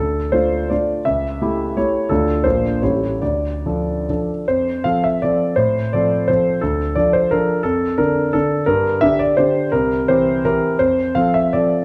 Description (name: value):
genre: classical, romantic triple-time dance for piano with dotted rhythms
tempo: 134-186 BPM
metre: 3/4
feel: rubato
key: D minor, F major from 4.5 s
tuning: A4 = 440 Hz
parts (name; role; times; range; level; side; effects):
- warm concert grand piano; solo; 0.0-11.8 s; A1 to F5; -18 LUFS; equal; none
room: wet recital hall reverb, RT60 1.6 s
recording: none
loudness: -18 LUFS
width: mono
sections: 0.0-4.5 A section; 4.5-11.8 B section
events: none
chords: 0.0 Dm; 1.1 A7/C#; 2.1 Dm; 2.4 Bb; 2.8 A7; 3.2 Dm; 4.5 F; 5.6 F/A; 6.6 Dm; 7.6 Dm/F; 8.7 Gm; 9.7 C7; 10.8 F